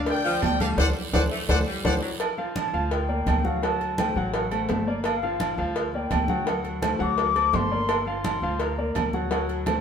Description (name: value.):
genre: latin, salsa.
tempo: 169 BPM.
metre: 4/4.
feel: straight.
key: G minor.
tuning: A4 = 437 Hz.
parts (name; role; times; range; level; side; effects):
clear concert grand piano; accompaniment; 0.0-9.8 s; F3 to F6; -29 LUFS; left 2 dB; none.
upright bass; bass; 0.0-9.8 s; G1 to D2; -29 LUFS; equal; none.
bright trumpet section; melody; 0.1-1.9 s; C5 to G5; -28 LUFS; left 2 dB; none.
agogo bells and timbales; percussion; 0.1-9.8 s; none; -31 LUFS; right 6 dB; none.
congas; percussion; 0.1-9.8 s; none; -33 LUFS; right 2 dB; none.
cowbell; percussion; 0.1-9.8 s; none; -32 LUFS; left 1 dB; none.
guiro; percussion; 0.1-1.9 s; none; -39 LUFS; right 5 dB; none.
edgy saxophone section; second line; 0.2-2.1 s; F3 to A3; -32 LUFS; equal; none.
mellow silver concert flute; melody; 2.6-9.1 s; D5 to D6; -28 LUFS; left 4 dB; none.
room: wet stone room reverb, RT60 1.2 s.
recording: band playing live in one room.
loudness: -22 LUFS.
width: side -7 dB against mid.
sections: 0.0-2.2 A section; 2.2-9.8 B section.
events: drum fill 0.8-2.2; band accent 0.8-2.2; flute solo 2.2-9.8.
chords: 0.0 G7(no3); 0.8 D7; 2.2 Gm7; 3.6 D7; 5.1 Gm7; 6.5 D7; 7.9 Gm7.